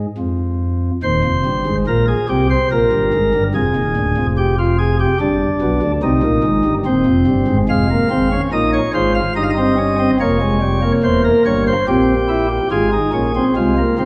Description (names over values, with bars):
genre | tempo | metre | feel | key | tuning
classical, baroque-style 3-part fugue for pipe organ | 72 BPM | 4/4 | straight | F minor | A4 = 438 Hz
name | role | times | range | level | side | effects
pipe organ, sparkling flutes | solo | 0.0-14.1 s | D1 to F5 | -16 LUFS | equal | none
room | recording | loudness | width
wet recital hall reverb, RT60 1.7 s | none | -16 LUFS | mono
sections
0.0-14.1 A section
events
none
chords
0.0 N.C.; 1.0 Cm/Eb; 2.7 Bb; 4.4 G7/F; 6.0 Cm; 7.7 Fm; 9.4 Eb/G; 11.0 C7/E; 12.7 Fm/Ab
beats
0.18 | 1.02 1.86 2.71 3.54 | 4.38 5.20 6.03 6.86 | 7.68 8.52 9.36 10.20 | 11.03 11.87 12.71 13.55